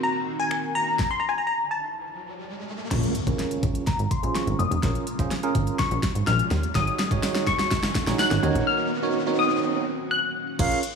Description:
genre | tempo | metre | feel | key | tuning
dance-pop | 125 BPM | 4/4 | straight | Bb minor | A4 = 438 Hz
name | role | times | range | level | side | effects
glassy wavetable pluck | melody | 0.0-10.6 s | Ab5 to Gb6 | -27 LUFS | left 5 dB | chorus, low-pass filter, tape echo
bell-like tine electric piano | accompaniment | 0.0-10.8 s | C4 to Db5 | -28 LUFS | right 6 dB | phaser, sidechain pumping, low-pass filter
string machine, full ensemble | sustained chords | 0.0-10.6 s | Db3 to Gb4 | -33 LUFS | right 1 dB | phaser, ensemble chorus, sidechain pumping, low-pass filter
pop drum kit | drums | 0.5-10.9 s | crash cymbal, finger snaps, hi-hat, kick drum, snare drum | -27 LUFS | equal | none
riser and impact | sound effects | 2.1-9.6 s | none | -33 LUFS | right 1 dB | none
plucky analog bass | bass | 2.9-10.7 s | F1 to Eb2 | -26 LUFS | equal | sidechain pumping
tambourine | percussion | 7.2-8.3 s | none | -38 LUFS | left 12 dB | none
concert flute | melody | 10.6-10.8 s | F5 | -26 LUFS | right 2 dB | none
room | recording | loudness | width
light reverb | studio ambience | -22 LUFS | side -5 dB against mid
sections
0.0-2.9 A section; 2.9-10.6 B section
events
stop 1.0-2.9; riser 2.1-2.9, 2.9-10.6; build-up 2.9-10.6; drum fill 2.9-8.7; impact 2.9-4.8; filter sweep 2.9-10.6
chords
0.0 Cm7b5; 0.8 Ebm7; 2.0 N.C.; 2.9 Bbm7; 6.8 Ab7sus4; 8.4 Ebm7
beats
0.03 0.51 | 0.99 1.47 1.95 2.43 | 2.91 3.39 3.87 4.35 | 4.83 5.31 5.79 6.27 | 6.75 7.23 7.71 8.19 | 8.67 9.15 9.63 10.11 | 10.59

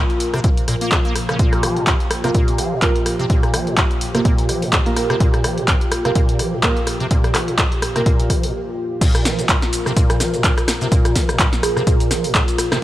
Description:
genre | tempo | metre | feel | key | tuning
acid house | 126 BPM | 4/4 | swing 56% on 16ths | unclear | A4 = 441 Hz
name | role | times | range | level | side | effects
warm analog pad | sustained chords | 0.0-12.8 s | Bb2 to Bb4 | -24 LUFS | equal | chorus, sidechain pumping
acid bass, square | riff | 0.0-12.8 s | Bb2 to Bb3 | -24 LUFS | equal | tube saturation, ensemble chorus, tape echo
punchy analog drum machine | drums | 0.1-12.8 s | crash cymbal, handclaps, hi-hat, rim click, shaker, snare drum | -21 LUFS | equal | none
electronic kick drum | drums | 0.4-12.5 s | none | -18 LUFS | equal | none
deep mellow chord stab | stabs | 2.2-8.1 s | Bb3 to Bb4 | -24 LUFS | right 3 dB | lush chorus, cassette tape, tape echo
buzzing kalimba | melody | 11.6-12.0 s | Ab4 | -24 LUFS | right 4 dB | tape echo
room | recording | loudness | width
light reverb | none | -15 LUFS | side -14 dB against mid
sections
0.0-9.0 A section; 9.0-12.8 B section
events
break 8.5-9.0; drop 9.0-12.8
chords
0.0 Bb5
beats
0.44 0.92 | 1.39 1.87 2.35 2.82 | 3.30 3.77 4.25 4.73 | 5.20 5.68 6.16 6.63 | 7.11 7.58 8.06 8.54 | 9.01 9.49 9.96 10.44 | 10.92 11.39 11.87 12.35 | 12.82

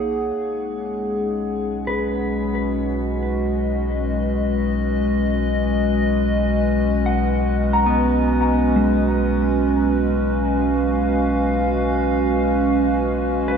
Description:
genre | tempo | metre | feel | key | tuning
ambient | free time | none | none | B lydian | A4 = 440 Hz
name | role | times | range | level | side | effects
warbly tape-like pad | sustained chords | 0.0-13.6 s | G#3 to F#5 | -20 LUFS | equal | chorus, built-in reverb, shimmer reverb
warm sub bass | bass | 0.0-13.6 s | B1 | -25 LUFS | equal | none
mellow electric guitar | arpeggios | 1.9-13.6 s | G#3 to A#5 | -24 LUFS | equal | ping-pong delay, shimmer reverb
room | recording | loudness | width
wet cathedral reverb, RT60 5.4 s | in a vast, echoing space | -18 LUFS | side -6 dB against mid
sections
0.4-13.6 A section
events
none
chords
0.4 Bsus2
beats
free time

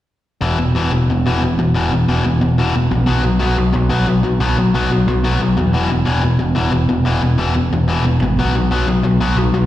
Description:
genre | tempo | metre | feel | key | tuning
punk | 181 BPM | 4/4 | straight | unclear | A4 = 440 Hz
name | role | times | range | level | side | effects
overdriven electric guitar | riff | 0.4-9.7 s | E2 to B3 | -16 LUFS | left 2 dB | slapback echo
growling picked electric bass | bass | 0.4-9.7 s | E1 to E2 | -17 LUFS | right 2 dB | overdrive
room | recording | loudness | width
digital ambience | live gig heard through the venue's PA, recital hall reverb | -14 LUFS | side -13 dB against mid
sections
0.4-9.7 A section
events
none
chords
0.4 E5; 3.1 B5; 5.7 E5; 8.4 B5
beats
| 0.43 0.76 1.09 1.42 | 1.75 2.08 2.42 2.75 | 3.08 3.41 3.74 4.07 | 4.41 4.74 5.07 5.40 | 5.73 6.06 6.39 6.73 | 7.06 7.39 7.72 8.05 | 8.38 8.71 9.04 9.37

